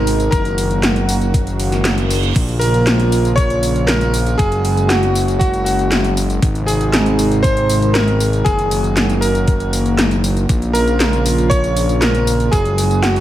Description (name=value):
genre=synthwave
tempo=118 BPM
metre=4/4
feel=straight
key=Bb minor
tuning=A4 = 444 Hz
part: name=clear electric grand piano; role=melody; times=0.0-13.2 s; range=Gb4 to Db5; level=-21 LUFS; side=equal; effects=tape echo
part: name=soft synth bell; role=second line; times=0.0-13.2 s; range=Gb5 to Db6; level=-26 LUFS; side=right 1 dB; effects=chorus, phaser, tape echo
part: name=warm analog pad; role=sustained chords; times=0.0-13.2 s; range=C3 to Gb4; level=-20 LUFS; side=right 1 dB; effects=lush chorus, sidechain pumping
part: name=fat analog bass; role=bass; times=0.0-13.2 s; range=Gb1 to Bb1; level=-18 LUFS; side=equal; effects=sidechain pumping
part: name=80s electronic pad drums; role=drums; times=0.1-13.2 s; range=crash cymbal, handclaps, hi-hat, snare drum, tambourine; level=-20 LUFS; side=equal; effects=overdrive
part: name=electronic kick drum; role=drums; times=0.3-12.6 s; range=none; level=-16 LUFS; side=equal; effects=overdrive
part: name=reverse cymbal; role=sound effects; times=1.7-2.4 s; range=none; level=-28 LUFS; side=right 8 dB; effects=none
room=light reverb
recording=none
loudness=-13 LUFS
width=side -13 dB against mid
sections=0.0-13.2 A section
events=reverse cymbal 1.7-2.4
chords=0.3 Ebm/Gb; 2.4 Bbm; 4.4 Gbsus2; 6.4 Ab; 8.5 Ebm/Gb; 10.5 Bbm; 12.5 Gbsus2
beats=| 0.32 0.83 1.34 1.85 | 2.36 2.87 3.37 3.88 | 4.39 4.90 5.41 5.92 | 6.42 6.93 7.44 7.95 | 8.46 8.97 9.48 9.98 | 10.49 11.00 11.51 12.02 | 12.53 13.04